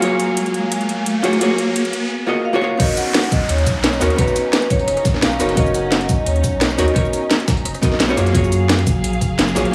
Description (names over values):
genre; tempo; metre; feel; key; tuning
liquid drum and bass; 173 BPM; 4/4; straight; B lydian; A4 = 439 Hz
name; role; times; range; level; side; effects
archtop guitar, miked and amplified; accompaniment; 0.0-9.7 s; A#3 to A#5; -23 LUFS; equal; tape echo
muted studio string section; sustained chords; 0.0-9.7 s; F#3 to G#5; -28 LUFS; equal; sidechain pumping
garage drum kit; drums; 0.0-9.7 s; crash cymbal, hi-hat, rim click, shaker, snare drum; -23 LUFS; equal; studio reverb
riser and downlifter; sound effects; 0.0-5.6 s; none; -27 LUFS; equal; none
vibraphone with medium hard mallets; melody; 2.5-7.3 s; B4 to F#5; -26 LUFS; equal; vintage 12-bit sampler grit, tape echo
dusty soul sampler-style drum kit; drums; 2.8-9.6 s; hi-hat, snare drum; -30 LUFS; equal; high-pass filter on hats, studio reverb, high-pass filter on snare
electronic kick drum; drums; 2.8-9.3 s; none; -21 LUFS; equal; studio reverb
warm sub bass; bass; 3.3-9.6 s; F#1 to F#2; -23 LUFS; equal; none
room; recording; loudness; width
moderate lush hall reverb, RT60 1.7 s; small room ambience; -17 LUFS; mono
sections
0.0-2.8 A section; 2.8-9.7 B section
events
build-up 0.0-2.8; riser 0.0-2.1; drop 2.8-9.7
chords
0.0 F#maj9; 2.8 Bmaj9; 8.2 F#maj9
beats
| 0.02 0.37 0.72 1.06 | 1.41 1.76 2.10 2.45 | 2.80 3.14 3.49 3.84 | 4.18 4.53 4.88 5.22 | 5.57 5.92 6.27 6.61 | 6.96 7.31 7.65 8.00 | 8.35 8.69 9.04 9.39 | 9.73